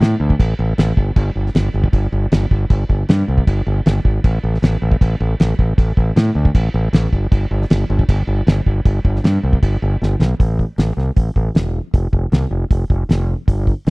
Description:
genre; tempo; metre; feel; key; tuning
indie rock; 156 BPM; 4/4; straight; A minor; A4 = 440 Hz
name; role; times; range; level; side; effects
growling fingered electric bass; bass; 0.0-13.9 s; E1 to A2; -16 LUFS; equal; overdrive
cloth-damped thuddy drum kit; drums; 0.0-13.9 s; crash cymbal, hi-hat, kick drum, snare drum; -15 LUFS; equal; none
room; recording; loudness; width
little or no reverb; dry, close 1970s-style studio recording; -14 LUFS; side -30 dB against mid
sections
0.0-10.4 A section; 10.4-13.9 B section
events
drum fill 10.0-10.4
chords
none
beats
0.02 0.40 0.79 | 1.17 1.55 1.94 2.32 | 2.71 3.09 3.48 3.86 | 4.25 4.63 5.02 5.40 | 5.79 6.17 6.55 6.94 | 7.32 7.71 8.09 8.47 | 8.86 9.24 9.63 10.01 | 10.40 10.78 11.17 11.55 | 11.94 12.33 12.71 13.10 | 13.48 13.87

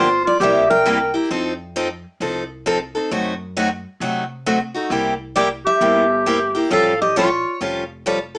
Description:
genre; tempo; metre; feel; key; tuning
acoustic string swing (jazz manouche); 133 BPM; 4/4; swing 64% on 8ths; C mixolydian; A4 = 440 Hz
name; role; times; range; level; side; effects
picked steel-string acoustic guitar; melody; 0.0-1.1, 5.4-7.6 s; C5 to G5; -20 LUFS; equal; none
mellow clarinet; second line; 0.0-1.1, 5.4-7.6 s; F4 to Bb4; -17 LUFS; equal; none
picked steel-string acoustic guitar; accompaniment; 0.0-8.4 s; C3 to A4; -19 LUFS; equal; none
upright bass; bass; 0.0-8.3 s; E#1 to C3; -32 LUFS; equal; none
room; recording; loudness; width
moderate studio ambience, RT60 0.5 s; small speaker sound; -16 LUFS; side -32 dB against mid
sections
0.0-8.4 A section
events
none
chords
0.4 C7; 1.3 F7; 3.1 F#dim7; 4.9 C7; 6.7 Aaug7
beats
0.41 0.86 | 1.31 1.76 2.21 2.66 | 3.11 3.56 4.01 4.46 | 4.91 5.36 5.81 6.26 | 6.71 7.16 7.61 8.06

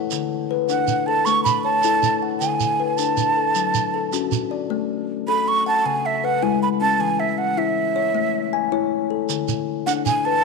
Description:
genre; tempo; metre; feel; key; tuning
southern african traditional, mbira-style interlocking cycle; 104 BPM (dotted quarters); 12/8; straight; A major; A4 = 438 Hz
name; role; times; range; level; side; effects
kalimba; arpeggios; 0.0-10.4 s; C#3 to G#5; -22 LUFS; left 11 dB; none
shekere; percussion; 0.1-4.5, 9.3-10.2 s; none; -26 LUFS; right 12 dB; none
breathy jazz flute; melody; 0.7-10.4 s; E5 to C#6; -20 LUFS; right 4 dB; slapback echo
room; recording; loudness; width
moderate plate reverb, RT60 2.5 s; 1960s-style stereo with parts hard left and right; -18 LUFS; side -4 dB against mid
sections
0.0-4.7 A section; 4.7-10.4 B section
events
none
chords
0.1 D; 1.3 A; 2.4 D; 3.6 F#m; 4.7 A5; 5.9 C#m; 7.0 E5; 8.2 A; 9.3 D5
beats
| 0.11 0.69 1.26 1.83 | 2.41 2.98 3.56 4.13 | 4.70 5.28 5.85 6.43 | 7.00 7.58 8.15 8.73 | 9.30 9.88

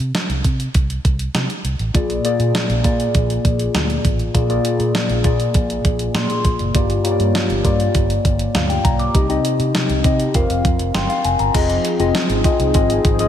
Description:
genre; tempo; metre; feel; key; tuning
1980s-style pop; 100 BPM; 4/4; straight; Bb mixolydian; A4 = 441 Hz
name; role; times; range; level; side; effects
vintage muted fingered electric bass; bass; 0.0-13.3 s; F1 to C3; -22 LUFS; right 1 dB; none
clean 12-bit digital drum machine; drums; 0.0-13.3 s; crash cymbal, hi-hat, kick drum, snare drum; -19 LUFS; right 1 dB; gated reverb
mellow tine electric piano; accompaniment; 1.9-13.3 s; G2 to D6; -18 LUFS; left 2 dB; phaser
warm analog pad; sustained chords; 11.5-13.3 s; F3 to Ab4; -25 LUFS; right 2 dB; chorus
room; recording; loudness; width
light reverb; none; -15 LUFS; side -10 dB against mid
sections
0.0-11.5 A section; 11.5-13.3 B section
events
tine electric piano fill 5.8-6.7, 10.6-11.5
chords
0.0 N.C.; 1.9 Bb7; 6.7 Gm7; 9.1 Cm; 10.3 Fsus4; 11.5 Fm7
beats
0.15 0.75 1.35 | 1.95 2.55 3.15 3.75 | 4.35 4.95 5.55 6.15 | 6.75 7.35 7.95 8.55 | 9.15 9.75 10.35 10.95 | 11.55 12.15 12.75

